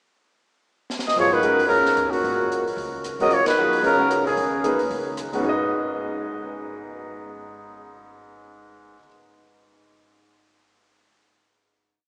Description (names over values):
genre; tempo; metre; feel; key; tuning
modal jazz; 225 BPM; 4/4; swing 59% on 8ths; G# dorian; A4 = 439 Hz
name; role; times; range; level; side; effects
open jazz drum kit; drums; 0.9-5.4 s; hi-hat, ride cymbal, rim click, snare drum; -38 LUFS; equal; none
growling trumpet; melody; 1.1-4.8 s; F#4 to D#5; -24 LUFS; equal; none
breathy trombone; second line; 1.2-4.8 s; A#2 to F#3; -29 LUFS; equal; none
clear grand piano; accompaniment; 1.2-9.1 s; G#2 to D#5; -29 LUFS; equal; none
upright bass; bass; 1.2-9.0 s; G#1 to E#2; -45 LUFS; equal; none
room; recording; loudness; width
wet cathedral reverb, RT60 5.4 s; recorded in a church or concert hall, small speaker sound; -22 LUFS; mono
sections
0.1-1.2 pickup bar; 1.2-5.4 A section; 5.4-7.6 final chord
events
drum fill 0.9; band accent 3.4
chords
0.1 N.C.; 1.2 G#13sus4; 5.4 G#m